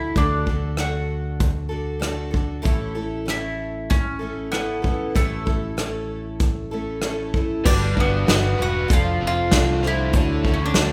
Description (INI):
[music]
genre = folk rock and heartland rock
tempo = 96 BPM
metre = 4/4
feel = straight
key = D major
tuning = A4 = 438 Hz
[part]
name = bowl-back mandolin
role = melody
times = 0.0-10.9 s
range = A3 to F#4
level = -29 LUFS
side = equal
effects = none
[part]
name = picked twelve-string acoustic guitar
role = accompaniment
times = 0.0-10.9 s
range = A2 to C5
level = -31 LUFS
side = equal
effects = none
[part]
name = fingered electric bass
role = bass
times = 0.0-10.9 s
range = E1 to D2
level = -29 LUFS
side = equal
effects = none
[part]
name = soft brush drum kit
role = drums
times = 0.2-10.9 s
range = crash cymbal, hi-hat, kick drum, rim click, snare drum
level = -24 LUFS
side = equal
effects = none
[part]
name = bright reed electric piano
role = accompaniment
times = 7.6-10.9 s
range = G3 to C#5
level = -34 LUFS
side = equal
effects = none
[part]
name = raw garage guitar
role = riff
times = 7.6-10.9 s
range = D3 to B4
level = -30 LUFS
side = equal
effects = overdrive
[sound]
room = moderate recital hall reverb, RT60 1.5 s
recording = recorded in a church or concert hall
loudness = -22 LUFS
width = mono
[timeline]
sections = 0.0-7.6 A section; 7.6-10.9 B section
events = none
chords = 0.0 D; 2.7 A; 7.6 Gmaj7; 8.9 F6; 10.1 Dmaj7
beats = | 0.16 0.79 1.41 2.04 | 2.66 3.28 3.91 4.53 | 5.16 5.78 6.40 7.03 | 7.65 8.27 8.89 9.51 | 10.13 10.76